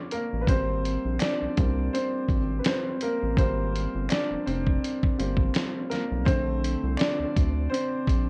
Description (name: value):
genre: lo-fi hip hop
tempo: 83 BPM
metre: 4/4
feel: swing 56% on 16ths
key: unclear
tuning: A4 = 440 Hz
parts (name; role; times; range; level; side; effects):
- warm upright piano; accompaniment; 0.0-8.3 s; D3 to D5; -30 LUFS; equal; none
- dusty soul sampler-style drum kit; drums; 0.1-8.3 s; hi-hat, kick drum, snare drum; -29 LUFS; equal; none
- round analog bass; bass; 0.3-8.3 s; F1 to D2; -31 LUFS; equal; none
- finger snap; percussion; 1.2-7.2 s; none; -42 LUFS; equal; none
room: light reverb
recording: worn, warbling old tape, cassette tape, warbly pitch drift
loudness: -26 LUFS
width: mono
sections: 0.0-8.3 A section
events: upright piano solo 0.0-8.3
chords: 0.5 Abmaj9; 6.3 Bbmaj9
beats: | 0.48 1.20 1.92 2.65 | 3.37 4.09 4.82 5.54 | 6.26 6.98 7.71